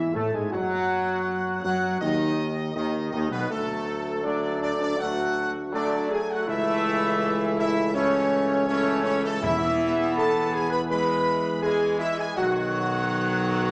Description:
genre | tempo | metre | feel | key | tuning
classical | 81 BPM | 4/4 | straight | E major | A4 = 440 Hz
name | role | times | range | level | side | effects
warm trumpet section | melody | 0.0-13.7 s | A4 to B5 | -32 LUFS | equal | none
bright trombone section | sustained chords | 0.0-13.7 s | B2 to B3 | -31 LUFS | equal | none
warm French horn section | sustained chords | 0.0-13.7 s | A3 to B4 | -30 LUFS | equal | none
mellow tuba | bass | 0.0-13.7 s | B1 to A2 | -32 LUFS | equal | none
timpani | percussion | 9.4-10.5 s | E2 | -40 LUFS | equal | none
room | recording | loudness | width
wet large studio reverb, RT60 1.4 s | none | -25 LUFS | mono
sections
0.0-13.7 A section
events
none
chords
0.0 E; 0.5 B/F#; 3.5 D; 6.5 A/C#; 9.4 E; 12.4 B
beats
| 0.53 1.27 2.02 2.76 | 3.50 4.25 4.99 5.74 | 6.48 7.22 7.95 8.68 | 9.44 10.18 10.91 11.64 | 12.37 13.11

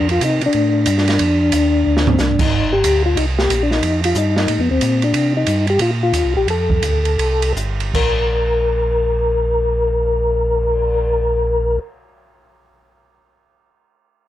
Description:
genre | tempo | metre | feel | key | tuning
soul jazz organ trio | 155-183 BPM | 4/4 | swing 63% on 8ths | unclear | A4 = 440 Hz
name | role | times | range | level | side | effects
percussive tonewheel organ | melody | 0.0-11.8 s | Cb4 to Bb4 | -17 LUFS | left 2 dB | slow rotary speaker, chorus vibrato
mellow tonewheel organ | bass | 0.0-11.8 s | G1 to C3 | -19 LUFS | right 1 dB | slow rotary speaker
open jazz drum kit | drums | 0.1-10.9 s | crash cymbal, cymbal swell, hi-hat, kick drum, ride cymbal, snare drum, toms | -22 LUFS | right 3 dB | none
room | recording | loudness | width
light reverb | none | -14 LUFS | side -13 dB against mid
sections
0.0-2.5 A section; 2.5-7.9 B section; 7.9-11.0 C section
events
drum fill 1.9-2.2; slowing down 5.1-7.9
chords
0.0 Cm69; 2.5 Csus2; 3.8 F9; 5.1 Cm7; 6.5 Fadd9; 7.9 N.C.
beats
0.22 0.54 0.87 | 1.20 1.53 1.85 2.18 | 2.51 2.84 3.17 3.49 | 3.82 4.15 4.48 4.81 | 5.13 5.46 5.80 6.13 | 6.47 6.82 7.18 7.55 | 7.93 8.32 8.70 9.09 | 9.47 9.86 10.25 10.63

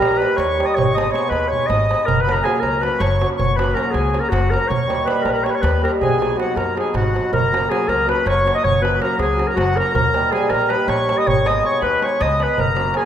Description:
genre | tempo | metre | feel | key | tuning
balkan folk, Balkan wedding band | 320 BPM (eighths) | 7/8 | straight | unclear | A4 = 439 Hz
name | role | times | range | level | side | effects
clear clarinet | melody | 0.0-13.1 s | F#4 to D#5 | -20 LUFS | left 2 dB | none
accordion | second line | 0.0-13.1 s | F#5 to D#6 | -24 LUFS | equal | none
cimbalom | accompaniment | 0.0-13.1 s | F#3 to G#4 | -23 LUFS | right 2 dB | none
upright bass | bass | 0.0-12.9 s | F#1 to F#2 | -23 LUFS | left 1 dB | none
darbuka | percussion | 0.0-13.0 s | none | -24 LUFS | right 3 dB | none
room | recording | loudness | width
moderate concert hall reverb, RT60 1.8 s | minimal, uncompressed stereo recording | -16 LUFS | side -9 dB against mid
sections
0.0-7.3 A section; 7.3-13.1 A section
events
drum fill 1.5-2.1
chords
0.0 D#; 0.8 G#m; 2.1 F#; 4.7 D#7; 6.0 B; 7.3 F#; 10.0 D#; 11.3 G#m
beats
0.02 0.21 0.39 0.58 | 0.77 0.96 1.14 1.33 1.52 1.71 1.89 | 2.08 2.27 2.46 2.64 2.83 3.02 3.21 | 3.39 3.58 3.77 3.96 4.14 4.33 4.52 | 4.71 4.89 5.08 5.27 5.46 5.64 5.83 | 6.02 6.21 6.39 6.58 6.77 6.96 7.14 | 7.33 7.52 7.71 7.89 8.08 8.27 8.46 | 8.64 8.83 9.02 9.21 9.39 9.58 9.77 | 9.96 10.14 10.33 10.52 10.71 10.89 11.08 | 11.27 11.46 11.64 11.83 12.02 12.21 12.39 | 12.58 12.77 12.96

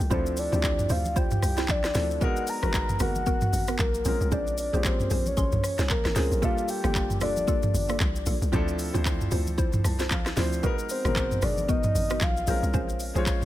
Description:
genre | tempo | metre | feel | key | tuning
amapiano | 114 BPM | 4/4 | swing 58% on 16ths | unclear | A4 = 440 Hz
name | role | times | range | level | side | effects
dark concert grand piano | accompaniment | 0.0-13.4 s | Cb3 to A5 | -33 LUFS | left 1 dB | none
hollow log drum bass | bass | 0.0-13.4 s | F1 to D2 | -28 LUFS | equal | none
afro-pop drum kit | drums | 0.0-13.4 s | handclaps, hi-hat, kick drum, rim click, shaker, snare drum, toms | -28 LUFS | equal | none
soft octave-layered synth lead | melody | 0.1-12.6 s | Bb4 to Bb5 | -30 LUFS | left 1 dB | chorus, digital delay
mallet-like synth pluck | stabs | 0.1-13.3 s | Bb3 to C6 | -34 LUFS | right 2 dB | chorus, phaser, digital delay
congas | percussion | 0.1-13.4 s | none | -38 LUFS | right 2 dB | none
room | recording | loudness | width
little or no reverb | none | -23 LUFS | side -14 dB against mid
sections
0.0-13.4 A section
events
grand piano fill 9.6-10.6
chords
0.1 Dm9; 2.2 Abm9; 4.1 Bbm9; 6.4 Gm9; 8.5 Dm9; 10.6 Abm9; 12.5 Bbm9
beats
| 0.11 0.64 1.16 1.69 | 2.21 2.74 3.27 3.79 | 4.32 4.84 5.37 5.90 | 6.42 6.95 7.48 8.00 | 8.53 9.06 9.58 10.11 | 10.63 11.16 11.69 12.21 | 12.74 13.27

